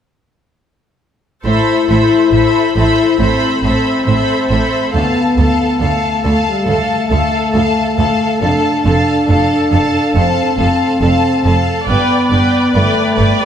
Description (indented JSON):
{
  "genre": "cinematic",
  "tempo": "69 BPM",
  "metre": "4/4",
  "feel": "straight",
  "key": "A minor",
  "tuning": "A4 = 440 Hz",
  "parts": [
    { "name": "clear chamber viola section", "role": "accompaniment", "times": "1.4-13.4 s", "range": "A4 to D5", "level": "-19 LUFS", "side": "right 2 dB", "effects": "none" },
    { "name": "dark French horn section", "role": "sustained chords", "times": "1.4-13.4 s", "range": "G3 to E4", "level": "-15 LUFS", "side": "left 2 dB", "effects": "none" },
    { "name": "rich symphonic double bass section", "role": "bass", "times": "1.4-13.3 s", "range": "F1 to D2", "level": "-19 LUFS", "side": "right 3 dB", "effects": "none" },
    { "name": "rich symphonic violin section", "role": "second line", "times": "1.5-13.4 s", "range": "D5 to B5", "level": "-18 LUFS", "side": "left 3 dB", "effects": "none" },
    { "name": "rich symphonic cello section", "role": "bass", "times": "1.5-13.3 s", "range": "D2 to A2", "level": "-19 LUFS", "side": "right 2 dB", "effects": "none" }
  ],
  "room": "wet scoring stage reverb, RT60 1.6 s",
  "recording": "none",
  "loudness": "-11 LUFS",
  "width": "side -8 dB against mid",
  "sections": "1.5-13.4 A section",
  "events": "none",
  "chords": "1.5 Amadd9; 4.9 Dm; 8.4 F; 11.9 G",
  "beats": "| 1.45 2.33 3.20 4.07 | 4.94 5.80 6.67 7.54 | 8.42 9.29 10.15 11.02 | 11.88 12.74"
}